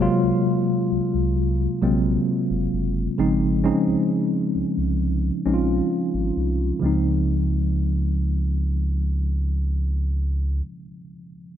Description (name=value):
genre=R&B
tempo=66 BPM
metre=4/4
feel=straight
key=Db major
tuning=A4 = 440 Hz
part: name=mellow tine electric piano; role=accompaniment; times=0.0-11.6 s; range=C3 to F4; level=-22 LUFS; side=left 1 dB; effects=medium stereo tremolo
part: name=warm sub bass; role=bass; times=0.0-10.6 s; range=Gb1 to Db2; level=-23 LUFS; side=equal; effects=none
room=moderate lush hall reverb, RT60 2.6 s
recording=low-pass filter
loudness=-20 LUFS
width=side -10 dB against mid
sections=0.0-6.8 A section; 6.8-10.5 B section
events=filter sweep 0.0-6.8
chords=0.0 Ab13; 3.2 Dbmaj9/Ab; 6.8 Dbmaj9